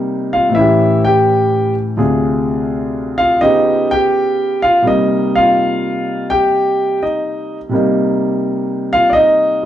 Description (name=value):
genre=solo jazz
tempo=84 BPM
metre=4/4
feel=swing 69% on 8ths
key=C minor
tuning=A4 = 440 Hz
part: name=warm grand piano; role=solo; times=0.0-9.7 s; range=D2 to G5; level=-12 LUFS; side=equal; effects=none
room=wet club reverb, RT60 0.7 s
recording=heard from further back in the room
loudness=-12 LUFS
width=side -11 dB against mid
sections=0.0-9.7 A section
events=none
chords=0.0 Cm7; 0.5 A7; 2.0 Dm7b5; 3.4 Db7#11; 4.8 Cm7